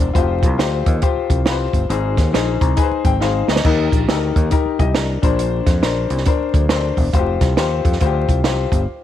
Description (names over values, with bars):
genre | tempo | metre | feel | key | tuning
uptempo 1960s-style soul | 137 BPM | 4/4 | swing 63% on 8ths | unclear | A4 = 440 Hz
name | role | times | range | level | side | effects
clear upright piano | accompaniment | 0.0-8.8 s | Ab2 to Bb5 | -20 LUFS | left 8 dB | none
fingered electric bass | bass | 0.0-8.9 s | Fb1 to F2 | -20 LUFS | equal | none
compact cocktail drum kit | drums | 0.1-8.8 s | crash cymbal, hi-hat, kick drum, snare drum | -18 LUFS | right 1 dB | none
room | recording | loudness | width
light reverb, small room ambience | 1960s-style stereo, vinyl crackle | -15 LUFS | side -11 dB against mid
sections
0.0-9.0 A section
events
upright piano fill 2.3-3.6; drum fill 3.2-3.6; band accent 8.9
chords
0.1 Fsus2; 1.9 Ab; 3.6 Eb; 5.2 Bbadd9; 7.1 Fsus2